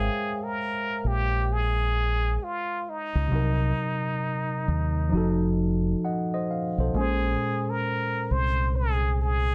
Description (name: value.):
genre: lo-fi hip hop.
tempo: 66 BPM.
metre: 4/4.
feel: swing 63% on 16ths.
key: Ab major.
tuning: A4 = 440 Hz.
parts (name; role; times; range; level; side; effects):
trumpet with plunger mute; melody; 0.0-9.5 s; Eb4 to C5; -31 LUFS; equal; slapback echo.
tine electric piano; accompaniment; 0.0-9.5 s; Bb2 to G5; -31 LUFS; equal; cassette tape.
deep dub fingered electric bass; bass; 0.0-9.5 s; F1 to Eb2; -28 LUFS; equal; none.
room: moderate small room reverb, RT60 0.5 s.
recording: dark, warm production.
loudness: -26 LUFS.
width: mono.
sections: 0.0-9.5 A section.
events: none.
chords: 0.0 Abmaj13; 3.3 Cm7b5; 5.1 F7b9; 6.9 Bbm9.